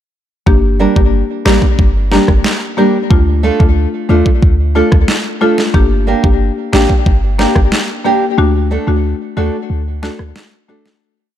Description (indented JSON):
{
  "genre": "dancehall",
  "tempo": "91 BPM",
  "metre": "4/4",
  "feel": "straight",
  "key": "G minor",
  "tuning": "A4 = 439 Hz",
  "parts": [
    { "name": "buzzing marimba with medium mallets", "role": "accompaniment", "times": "0.5-10.8 s", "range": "A3 to G4", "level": "-16 LUFS", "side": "left 5 dB", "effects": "sidechain pumping" },
    { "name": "clean 808-style bass", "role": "bass", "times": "0.5-10.3 s", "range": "G1 to Eb2", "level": "-14 LUFS", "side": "equal", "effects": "none" },
    { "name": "pop drum kit", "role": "drums", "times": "0.5-11.0 s", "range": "kick drum, rim click, snare drum", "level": "-13 LUFS", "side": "equal", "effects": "overdrive" },
    { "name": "nylon-string guitar", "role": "arpeggios", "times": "0.8-10.9 s", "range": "G3 to Bb4", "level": "-17 LUFS", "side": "right 4 dB", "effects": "ping-pong delay" }
  ],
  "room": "studio ambience",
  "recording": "dark, warm production",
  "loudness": "-10 LUFS",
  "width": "side -11 dB against mid",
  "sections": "0.5-11.0 verse",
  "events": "break 8.4-11.0; fade-out 8.4-11.0",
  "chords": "0.5 Gm; 3.1 Dm; 5.7 Gm; 8.4 D"
}